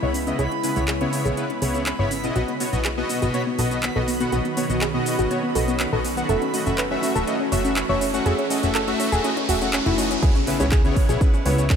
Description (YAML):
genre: progressive house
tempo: 122 BPM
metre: 4/4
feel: straight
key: C# minor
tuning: A4 = 440 Hz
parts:
  - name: shimmering ambient pad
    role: sustained chords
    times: 0.0-11.8 s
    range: C#3 to F#4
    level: -29 LUFS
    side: right 1 dB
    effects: chorus, built-in reverb, vintage 12-bit sampler grit, sidechain pumping
  - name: soft round pluck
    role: arpeggios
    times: 0.0-11.8 s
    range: B3 to D#5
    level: -26 LUFS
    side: equal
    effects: chorus, sidechain pumping, digital delay
  - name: soft supersaw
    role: stabs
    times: 0.0-11.6 s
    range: B2 to F#5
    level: -25 LUFS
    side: left 1 dB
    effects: sidechain pumping, digital delay
  - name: plucky analog bass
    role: bass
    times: 0.0-11.8 s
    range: E1 to C#2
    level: -26 LUFS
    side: equal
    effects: sidechain pumping
  - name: backwards swelling texture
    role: texture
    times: 0.0-10.2 s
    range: B5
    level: -36 LUFS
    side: right 4 dB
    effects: built-in reverb, sidechain pumping
  - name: pop drum kit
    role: drums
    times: 0.1-11.8 s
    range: crash cymbal, handclaps, hi-hat, shaker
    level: -30 LUFS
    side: equal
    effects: none
  - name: riser and impact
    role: sound effects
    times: 6.5-11.8 s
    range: none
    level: -33 LUFS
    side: right 1 dB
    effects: none
  - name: electronic kick drum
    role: drums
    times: 10.2-11.8 s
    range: none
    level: -18 LUFS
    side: equal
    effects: none
  - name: vintage brush drum kit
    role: drums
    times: 10.2-11.8 s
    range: ride cymbal, snare drum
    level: -36 LUFS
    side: right 2 dB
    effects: high-pass filter on cymbals, low-pass filter on cymbals, high-pass filter on snare, low-pass filter on snare, high-pass filter on room, low-pass filter on room
room: moderate huge ambient reverb, RT60 6.2 s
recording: none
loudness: -19 LUFS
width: side -7 dB against mid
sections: 0.0-10.2 A section; 10.2-11.8 B section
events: build-up 0.0-10.2; filter sweep on synth pluck 0.0-10.2; riser 6.5-10.2; drop 10.2-11.8; impact 10.2-11.8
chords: 0.0 C#m7; 2.4 B; 6.3 F#m7; 10.2 C#m7